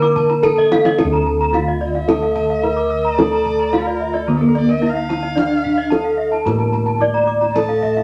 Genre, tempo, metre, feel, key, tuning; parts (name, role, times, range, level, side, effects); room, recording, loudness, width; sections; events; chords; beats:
Balinese gamelan; 110 BPM; 4/4; straight; D pelog; A4 = 444 Hz
gamelan-type bronze metallophone; melody; 0.0-8.0 s; Bb3 to D5; -20 LUFS; equal
gamelan-type bronze metallophone; accompaniment; 0.0-8.0 s; D3 to Bb3; -33 LUFS; equal
gamelan-type bronze metallophone; arpeggios; 0.0-8.0 s; Bb4 to Eb6+35c; -29 LUFS; equal
gamelan-type bronze metallophone; arpeggios; 0.0-8.0 s; A4 to D6; -27 LUFS; equal
gamelan-type bossed gongs; bass; 0.0-8.0 s; D2 to A4; -25 LUFS; equal
kendang; percussion; 0.0-8.0 s; -24 LUFS; equal
rich erhu; second line; 1.9-8.0 s; A4 to A5; -28 LUFS; equal
wet studio reverb, RT60 0.6 s; -17 LUFS; mono
1.0-8.0 A section
drum fill 0.6-1.0
0.44 | 0.99 1.54 2.09 2.63 | 3.18 3.73 4.27 4.82 | 5.37 5.91 6.46 7.01 | 7.55